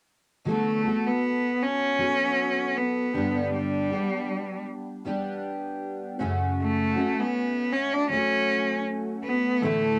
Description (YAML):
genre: acoustic pop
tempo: 79 BPM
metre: 4/4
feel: swing 55% on 16ths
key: unclear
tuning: A4 = 438 Hz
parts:
  - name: rich cello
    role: melody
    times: 0.5-10.0 s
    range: G3 to D4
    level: -27 LUFS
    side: equal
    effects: cassette tape
  - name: fingerpicked steel-string acoustic guitar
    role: accompaniment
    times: 0.5-10.0 s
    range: F#2 to A4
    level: -31 LUFS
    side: equal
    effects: double-tracked, cassette tape
room: wet booth ambience, RT60 0.2 s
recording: home recording on cassette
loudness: -26 LUFS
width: mono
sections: 0.5-10.0 A section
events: none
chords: 0.5 D6; 3.1 G; 6.2 F#m